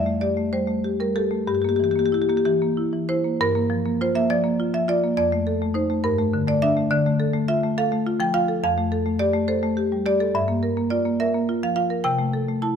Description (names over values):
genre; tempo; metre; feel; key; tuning
classical, contemporary piece for solo marimba; 62-72 BPM (dotted quarters); 6/8; rubato; G dorian; A4 = 440 Hz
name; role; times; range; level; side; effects
marimba with medium hard mallets; solo; 0.0-12.8 s; F2 to A5; -20 LUFS; equal; none
room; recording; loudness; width
moderate recital hall reverb, RT60 1.8 s; close, detailed microphones; -20 LUFS; side -7 dB against mid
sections
0.0-3.4 A section; 3.4-12.8 B section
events
none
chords
0.0 Fadd9; 1.5 Gm6; 3.4 Gm7; 5.2 F7; 6.0 Gmadd9; 6.9 Dm; 8.6 Fadd9; 10.3 Gm7; 12.0 C6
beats
0.53 | 1.48 2.44 | 3.39 4.30 | 5.17 6.03 | 6.92 7.78 | 8.63 9.48 | 10.34 11.20 | 12.04